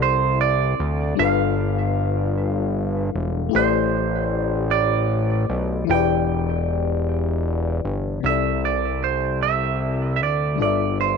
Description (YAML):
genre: slow six-eight R&B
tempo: 51 BPM (dotted quarters)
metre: 6/8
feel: straight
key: C major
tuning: A4 = 441 Hz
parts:
  - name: clean electric guitar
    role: melody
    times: 0.0-11.2 s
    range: C5 to G5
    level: -23 LUFS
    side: right 13 dB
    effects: tape echo
  - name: FM electric piano with auto-pan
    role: accompaniment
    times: 0.0-11.2 s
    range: C3 to F5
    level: -25 LUFS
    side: left 16 dB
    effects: none
  - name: fat analog bass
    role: bass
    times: 0.0-11.2 s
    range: E1 to D2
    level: -23 LUFS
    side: equal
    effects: none
room: light reverb, digital ambience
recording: 1960s-style stereo with parts hard left and right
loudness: -19 LUFS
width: side -5 dB against mid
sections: 0.0-8.2 A section; 8.2-11.2 B section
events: none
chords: 0.0 C69; 1.2 G13; 3.5 Am11; 5.9 Em7; 8.2 C69; 10.6 Gsus2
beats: 0.00 | 1.18 2.35 | 3.53 4.71 | 5.88 7.06 | 8.23 9.41 | 10.59